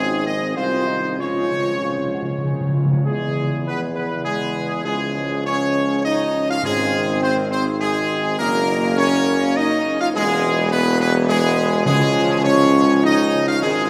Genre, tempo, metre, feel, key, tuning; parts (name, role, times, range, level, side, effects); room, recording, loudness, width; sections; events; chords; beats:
classical, ceremonial fanfare; 102 BPM; 3/4; straight; A4 = 441 Hz
bright trumpet section; melody; 0.0-13.9 s; G#4 to F5; -24 LUFS; equal
clear French horn section; sustained chords; 0.0-13.9 s; Ab3 to Ab4; -26 LUFS; equal
clear trombone section; sustained chords; 0.0-13.9 s; Db3 to Db4; -29 LUFS; equal
clear tuba; bass; 0.0-13.9 s; E1 to E2; -25 LUFS; equal
timpani; percussion; 1.2-3.0, 6.6-7.5, 11.9-12.7 s; Ab2 to Db3; -27 LUFS; equal
wet cathedral reverb, RT60 5.2 s; -19 LUFS; mono
0.0-3.1 A section; 3.1-13.9 B section
timpani fill 1.2-3.1
0.0 Ab; 1.2 Db; 3.1 E; 4.8 Db; 6.6 Ab; 8.4 Gb; 10.1 E; 11.9 Db
0.56 | 1.19 1.81 2.43 | 3.05 3.65 4.25 | 4.84 5.44 6.04 | 6.63 7.21 7.80 | 8.39 8.98 9.56 | 10.14 10.72 11.29 | 11.87 12.45 13.04 | 13.62